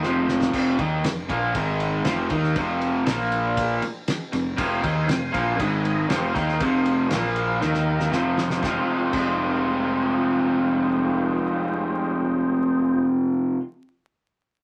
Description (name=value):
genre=psychedelic rock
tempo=119 BPM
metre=4/4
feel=straight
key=F minor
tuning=A4 = 440 Hz
part: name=percussive tonewheel organ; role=sustained chords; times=0.0-0.5, 4.6-13.1 s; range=F3 to Ab5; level=-33 LUFS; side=equal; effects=slow rotary speaker, overdrive, chorus vibrato
part: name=raw garage guitar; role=riff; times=0.0-13.6 s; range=F2 to F4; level=-24 LUFS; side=equal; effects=overdrive
part: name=fuzz fingered electric bass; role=bass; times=0.0-13.6 s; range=F1 to Eb2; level=-31 LUFS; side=equal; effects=overdrive
part: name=cloth-damped thuddy drum kit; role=drums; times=0.0-9.3 s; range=crash cymbal, kick drum, ride cymbal, snare drum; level=-32 LUFS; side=equal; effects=none
room=moderate small room ambience, RT60 0.5 s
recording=vinyl crackle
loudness=-23 LUFS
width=mono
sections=0.5-8.6 A section; 8.6-12.7 B section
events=drum fill 0.0-0.5, 7.6-8.6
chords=0.0 Fm; 0.5 F5; 1.6 Ab5; 2.1 F5; 3.1 Bb5; 3.8 Fm; 5.6 Ab5; 6.1 Fm; 7.1 Bb5; 7.6 Eb5; 8.1 Fm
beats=0.03 | 0.54 1.04 1.55 2.06 | 2.56 3.07 3.58 4.08 | 4.59 5.09 5.60 6.11 | 6.61 7.12 7.62 8.13 | 8.63 9.14 9.64 10.14 | 10.65 11.15 11.65 12.16